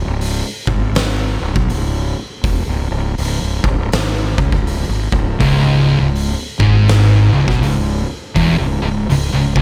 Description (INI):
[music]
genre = stoner and doom metal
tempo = 81 BPM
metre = 4/4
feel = swing 62% on 8ths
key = C# minor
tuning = A4 = 440 Hz
[part]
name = fuzz fingered electric bass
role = bass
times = 0.0-9.6 s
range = C#1 to C#2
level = -21 LUFS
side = equal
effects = overdrive
[part]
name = oversized low-tuned drum kit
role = drums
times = 0.2-9.6 s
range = hi-hat, kick drum, snare drum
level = -22 LUFS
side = equal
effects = none
[part]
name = thick fuzz guitar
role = riff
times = 5.4-9.6 s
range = C#2 to B2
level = -18 LUFS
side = equal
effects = distortion
[part]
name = thick fuzz guitar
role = riff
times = 5.4-9.6 s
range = C#2 to B2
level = -18 LUFS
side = equal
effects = distortion
[sound]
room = studio reverb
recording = none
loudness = -16 LUFS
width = mono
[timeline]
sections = 0.0-9.6 A section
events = none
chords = 0.0 C#5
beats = 0.22 0.96 1.70 | 2.44 3.17 3.92 4.66 | 5.40 6.14 6.88 7.62 | 8.36 9.10